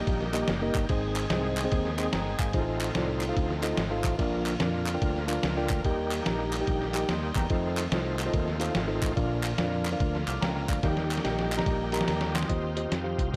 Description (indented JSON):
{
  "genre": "uptempo gospel",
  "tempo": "145 BPM",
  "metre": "4/4",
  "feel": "swing 65% on 8ths",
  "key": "Eb major",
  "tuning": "A4 = 440 Hz",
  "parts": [
    { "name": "mellow tine electric piano", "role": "accompaniment", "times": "0.0-13.4 s", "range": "Ab2 to F6", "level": "-34 LUFS", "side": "equal", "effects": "none" },
    { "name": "bright tonewheel organ", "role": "sustained chords", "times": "0.0-13.4 s", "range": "D3 to Ab4", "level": "-37 LUFS", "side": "equal", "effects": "slow rotary speaker, overdrive, chorus vibrato" },
    { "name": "modern bright fingered electric bass", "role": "bass", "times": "0.1-13.4 s", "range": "Gb1 to F2", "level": "-35 LUFS", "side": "equal", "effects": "none" },
    { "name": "lo-fi sampler-style drum kit", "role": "drums", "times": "0.1-13.4 s", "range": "hi-hat, kick drum, ride cymbal, snare drum", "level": "-33 LUFS", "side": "equal", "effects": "none" },
    { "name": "group handclap", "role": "percussion", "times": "0.3-12.4 s", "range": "none", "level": "-39 LUFS", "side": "equal", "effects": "none" }
  ],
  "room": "light reverb",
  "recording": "none",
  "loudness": "-28 LUFS",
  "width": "mono",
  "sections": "0.0-12.5 A section",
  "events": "drum fill 10.8-12.5",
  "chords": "0.0 Eb; 0.9 Ab; 2.5 F7/A; 4.2 Bb; 5.9 Eb; 7.5 F7; 9.2 Bb; 10.8 Eb; 12.5 Eb69"
}